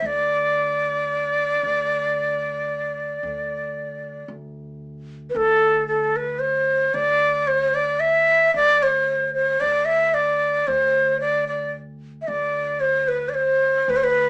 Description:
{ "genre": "Arabic maqam ensemble", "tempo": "113 BPM (eighths)", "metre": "10/8", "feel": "straight", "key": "D maqam rast", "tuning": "A4 = 439 Hz", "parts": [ { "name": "breathy bright ney", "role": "melody", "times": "0.0-14.3 s", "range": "A4 to E5", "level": "-21 LUFS", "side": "equal", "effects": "none" }, { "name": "upright bass", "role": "bass", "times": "0.0-14.3 s", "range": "D2", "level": "-41 LUFS", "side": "equal", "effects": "none" } ], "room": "wet small room ambience, RT60 0.5 s", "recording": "band playing live in one room, small speaker sound", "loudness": "-21 LUFS", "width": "mono", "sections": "0.0-5.4 A section; 5.4-14.3 B section", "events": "none", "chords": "none" }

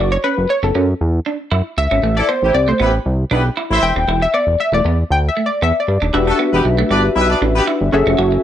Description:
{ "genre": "funk", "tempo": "117 BPM", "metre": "4/4", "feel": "straight", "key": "E minor", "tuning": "A4 = 440 Hz", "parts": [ { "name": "funky polysynth comp", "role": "accompaniment", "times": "0.0-8.4 s", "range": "C#4 to G5", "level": "-17 LUFS", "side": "left 2 dB", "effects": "chorus" }, { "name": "clean electric guitar", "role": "riff", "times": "0.0-8.4 s", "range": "A3 to F#4", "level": "-22 LUFS", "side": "right 6 dB", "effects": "analog chorus" }, { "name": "fat analog bass", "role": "bass", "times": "0.0-8.4 s", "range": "D#1 to G2", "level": "-17 LUFS", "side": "equal", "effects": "none" }, { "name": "clear horn section", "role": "second line", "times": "2.2-7.6 s", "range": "G3 to E5", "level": "-18 LUFS", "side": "equal", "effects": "none" } ], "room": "light reverb, digital ambience", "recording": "nothing above 10.3 kHz", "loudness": "-14 LUFS", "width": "side -10 dB against mid", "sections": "0.0-6.1 A section; 6.1-8.4 B section", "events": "analog polysynth solo 0.0-6.1", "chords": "0.0 F#7(no3); 2.0 Am9; 4.1 Em7; 6.1 Em9; 7.9 F#m9" }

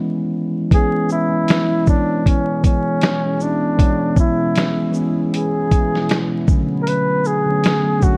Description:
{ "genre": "lo-fi hip hop", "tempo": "78 BPM", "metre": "4/4", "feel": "swing 58% on 16ths", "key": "C# phrygian", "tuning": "A4 = 441 Hz", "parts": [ { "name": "mellow tine electric piano", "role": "accompaniment", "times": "0.0-8.2 s", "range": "C#3 to C#5", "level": "-22 LUFS", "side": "equal", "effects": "cassette tape, low-pass filter" }, { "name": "breathy flugelhorn", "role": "melody", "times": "0.7-8.2 s", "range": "C#4 to B4", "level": "-23 LUFS", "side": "equal", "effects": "low-pass filter" }, { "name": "deep dark ambient pad", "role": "sustained chords", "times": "1.4-8.2 s", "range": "B2 to G#4", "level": "-32 LUFS", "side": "equal", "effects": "chorus, built-in reverb, low-pass filter" }, { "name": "lo-fi sampler-style drum kit", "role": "drums", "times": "0.7-8.2 s", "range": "finger snaps, hi-hat, kick drum, shaker, snare drum", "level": "-19 LUFS", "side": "equal", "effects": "none" } ], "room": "light reverb", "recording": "vinyl crackle", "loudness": "-18 LUFS", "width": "mono", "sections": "0.7-8.2 A section", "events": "break 0.0-0.7", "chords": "0.0 C#m7; 6.5 Bm7" }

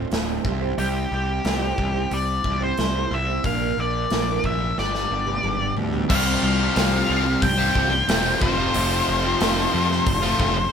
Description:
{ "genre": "quiet-loud alternative rock", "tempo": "90 BPM", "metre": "4/4", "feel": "straight", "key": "unclear", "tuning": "A4 = 442 Hz", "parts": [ { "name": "picked steel-string acoustic guitar", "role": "arpeggios", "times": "0.0-6.1 s", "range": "D2 to C5", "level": "-28 LUFS", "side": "right 9 dB", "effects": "none" }, { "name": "fuzz picked electric bass", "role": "bass", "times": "0.0-10.6 s", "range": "D1 to F2", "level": "-26 LUFS", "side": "left 1 dB", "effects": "overdrive" }, { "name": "big rock drum kit", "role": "drums", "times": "0.1-10.6 s", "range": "crash cymbal, hi-hat, kick drum, snare drum, toms", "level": "-26 LUFS", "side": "equal", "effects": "none" }, { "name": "octave-fuzz lead guitar", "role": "melody", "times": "0.8-10.7 s", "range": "G4 to G5", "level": "-24 LUFS", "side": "left 2 dB", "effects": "distortion" }, { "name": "rich studio string section", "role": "sustained chords", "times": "6.1-10.7 s", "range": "G4 to C6", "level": "-32 LUFS", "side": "equal", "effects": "none" }, { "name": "fuzz guitar", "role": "riff", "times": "6.1-10.6 s", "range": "F2 to C5", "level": "-23 LUFS", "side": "left 1 dB", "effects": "distortion" } ], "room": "light reverb", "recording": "band playing live in one room", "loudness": "-19 LUFS", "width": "side -7 dB against mid", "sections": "0.0-6.1 A section; 6.1-10.7 B section", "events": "drum fill 4.8-6.1", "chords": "0.4 C; 3.4 Bb; 4.8 G; 6.1 Csus4; 8.4 F" }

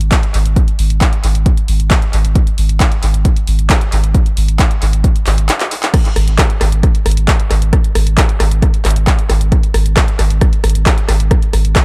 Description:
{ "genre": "driving peak-time techno", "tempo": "134 BPM", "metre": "4/4", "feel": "straight", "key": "unclear", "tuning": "A4 = 441 Hz", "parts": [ { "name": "saturated sub bass", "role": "bass", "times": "0.0-11.8 s", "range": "G#1", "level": "-15 LUFS", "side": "equal", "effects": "overdrive, sidechain pumping, low-pass filter" }, { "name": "punchy analog drum machine", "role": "drums", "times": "0.0-11.8 s", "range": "crash cymbal, handclaps, hi-hat, rim click", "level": "-21 LUFS", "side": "equal", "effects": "sidechain pumping on hats, sidechain pumping on cymbals, analog delay" }, { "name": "electronic kick drum", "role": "drums", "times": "0.1-11.8 s", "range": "none", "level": "-15 LUFS", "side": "equal", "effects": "none" } ], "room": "little or no reverb", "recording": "echo-heavy mix", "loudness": "-13 LUFS", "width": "mono", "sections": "0.0-5.9 A section; 5.9-11.8 B section", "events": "break 5.5-5.9; drum fill 5.6-5.9; drop 5.9-11.8", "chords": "none" }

